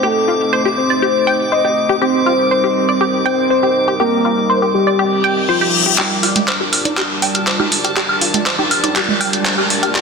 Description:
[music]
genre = progressive house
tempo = 121 BPM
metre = 4/4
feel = straight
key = G minor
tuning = A4 = 439 Hz
[part]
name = soft octave-layered synth lead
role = melody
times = 0.0-5.9 s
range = F4 to Eb5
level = -16 LUFS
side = left 1 dB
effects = chorus, phaser, ping-pong delay
[part]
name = warm analog pad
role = sustained chords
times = 0.0-10.0 s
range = G3 to Eb5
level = -22 LUFS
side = right 2 dB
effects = chorus
[part]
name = tight sequenced synth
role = arpeggios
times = 0.0-10.0 s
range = F4 to G5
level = -19 LUFS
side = left 1 dB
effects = chorus, phaser, ping-pong delay
[part]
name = drifting glass-harmonics texture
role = texture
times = 0.0-10.0 s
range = A5 to D6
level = -24 LUFS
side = left 2 dB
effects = chorus, built-in reverb
[part]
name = reverse cymbal and riser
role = sound effects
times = 5.2-10.0 s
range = none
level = -21 LUFS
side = left 4 dB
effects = none
[part]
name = pop drum kit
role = drums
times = 6.0-10.0 s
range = handclaps, hi-hat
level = -16 LUFS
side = equal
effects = soft clipping on snare, high-pass filter on snare, high-pass filter on hats
[part]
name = woodblock and congas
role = percussion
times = 6.2-9.9 s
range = none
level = -20 LUFS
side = right 4 dB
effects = none
[sound]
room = wet lush hall reverb, RT60 1.8 s, digital ambience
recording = dense, heavily limited modern master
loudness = -13 LUFS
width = side -5 dB against mid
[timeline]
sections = 0.0-6.0 A section; 6.0-10.0 B section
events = reverse cymbal 5.2-6.0; build-up 6.0-10.0; drum fill 6.0-10.0; riser 6.0-10.0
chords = 0.0 Adim; 2.0 Cm7; 6.0 Gm7

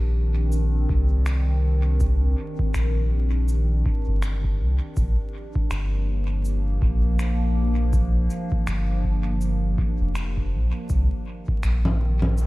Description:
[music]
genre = ambient dub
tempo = 81 BPM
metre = 4/4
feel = swing 58% on 16ths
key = C minor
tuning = A4 = 441 Hz
[part]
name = warbly tape-like pad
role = sustained chords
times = 0.0-12.5 s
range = Eb3 to Bb4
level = -30 LUFS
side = equal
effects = chorus, built-in reverb, phaser
[part]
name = soft dub sub bass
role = bass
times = 0.0-12.5 s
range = F1 to C2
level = -21 LUFS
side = equal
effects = none
[part]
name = electronic cabasa, finger snaps and congas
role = drums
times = 0.5-12.5 s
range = none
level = -32 LUFS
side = equal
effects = dub echo
[part]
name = electronic kick drum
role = drums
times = 0.9-11.6 s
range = none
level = -26 LUFS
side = equal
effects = none
[sound]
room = little or no reverb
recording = vinyl crackle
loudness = -20 LUFS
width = side -19 dB against mid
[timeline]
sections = 0.0-12.5 A section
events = none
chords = 0.0 Cm9; 5.0 Bb6; 10.9 Cm9

